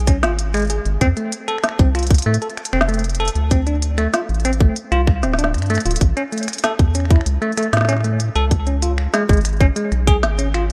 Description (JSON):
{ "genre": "IDM", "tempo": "96 BPM", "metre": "4/4", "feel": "straight", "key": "unclear", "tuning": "A4 = 440 Hz", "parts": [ { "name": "rubbery square bass", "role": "bass", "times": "0.0-10.7 s", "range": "D1 to A2", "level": "-21 LUFS", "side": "equal", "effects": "none" }, { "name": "organic electronic drum kit", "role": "drums", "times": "0.0-10.7 s", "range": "finger snaps, hi-hat, snare drum", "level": "-25 LUFS", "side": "equal", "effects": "small room ambience" }, { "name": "bell-like tine electric piano", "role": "arpeggios", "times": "0.1-10.6 s", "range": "G#3 to A4", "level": "-24 LUFS", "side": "equal", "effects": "dub echo" }, { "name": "electronic kick drum", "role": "drums", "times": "0.1-10.2 s", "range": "none", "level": "-17 LUFS", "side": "equal", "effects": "small room ambience" } ], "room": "light reverb, digital ambience", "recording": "rough home demo mix, lossy compression artefacts", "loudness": "-18 LUFS", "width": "mono", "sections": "0.0-10.7 A section", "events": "none", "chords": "0.0 N.C.; 1.0 F; 3.5 D7(no3); 6.0 A; 8.5 C#5", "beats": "0.39 | 1.01 1.64 2.26 2.89 | 3.51 4.14 4.76 5.39 | 6.01 6.64 7.26 7.89 | 8.51 9.14 9.76 10.39" }